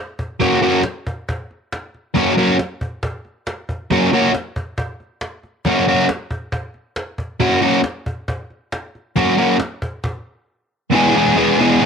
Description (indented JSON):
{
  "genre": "garage rock duo or trio",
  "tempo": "137 BPM",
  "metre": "4/4",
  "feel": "straight",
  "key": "F# mixolydian",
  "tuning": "A4 = 439 Hz",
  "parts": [
    { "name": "cajon", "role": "drums", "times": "0.2-10.1 s", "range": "none", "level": "-26 LUFS", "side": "equal", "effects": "cassette tape" },
    { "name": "overdriven electric guitar", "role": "riff", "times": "0.4-11.9 s", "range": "E2 to G#4", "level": "-13 LUFS", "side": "equal", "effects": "cassette tape" }
  ],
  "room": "studio reverb",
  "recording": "home recording on cassette",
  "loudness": "-16 LUFS",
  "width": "side -6 dB against mid",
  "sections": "0.0-10.9 A section",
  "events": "stop 10.0-10.9",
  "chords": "0.0 F#; 10.9 E"
}